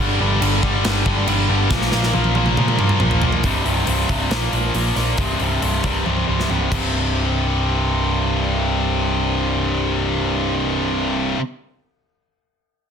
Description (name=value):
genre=hard rock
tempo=137 BPM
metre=4/4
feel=straight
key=unclear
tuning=A4 = 440 Hz
part: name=heavy high-gain guitar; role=riff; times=0.0-11.4 s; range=C2 to Bb3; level=-19 LUFS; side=left 1 dB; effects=distortion
part: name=picked electric bass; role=bass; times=0.0-11.3 s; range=C1 to Bb2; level=-22 LUFS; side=equal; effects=none
part: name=big rock drum kit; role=drums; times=0.4-6.8 s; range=crash cymbal, hi-hat, kick drum, snare drum, toms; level=-23 LUFS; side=right 1 dB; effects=none
room=light reverb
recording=dense, heavily limited modern master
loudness=-17 LUFS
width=side -7 dB against mid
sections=0.0-3.4 A section; 3.4-6.9 B section; 6.9-10.5 C section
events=drum fill 1.7-3.4, 6.1-6.9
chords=0.0 G5; 1.7 Bb5; 3.4 C5; 4.3 Bb5; 5.2 C5